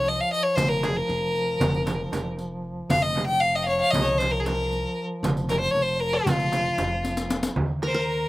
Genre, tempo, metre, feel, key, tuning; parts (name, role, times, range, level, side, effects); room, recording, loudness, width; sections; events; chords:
Turkish makam ensemble; 232 BPM (eighths); 9/8; straight; F makam ussak; A4 = 440 Hz
clear violin; melody; 0.0-8.3 s; F4 to G5-28c; -24 LUFS; left 1 dB; slapback echo
upright bass; bass; 0.0-8.3 s; F1 to Eb2; -31 LUFS; equal
mellow duduk; drone; 0.0-7.6 s; F3; -34 LUFS; right 1 dB
darbuka; percussion; 0.1-7.9 s; -30 LUFS; right 1 dB
riq; percussion; 0.1-7.6 s; -32 LUFS; left 2 dB
frame drum; percussion; 0.6-7.9 s; -31 LUFS; right 3 dB; slapback echo
qanun; second line; 7.8-8.3 s; Bb4; -29 LUFS; right 1 dB
light reverb; recorded outdoors, with no room sound; -22 LUFS; side -18 dB against mid
0.0-7.6 A section
drum fill 7.0-7.6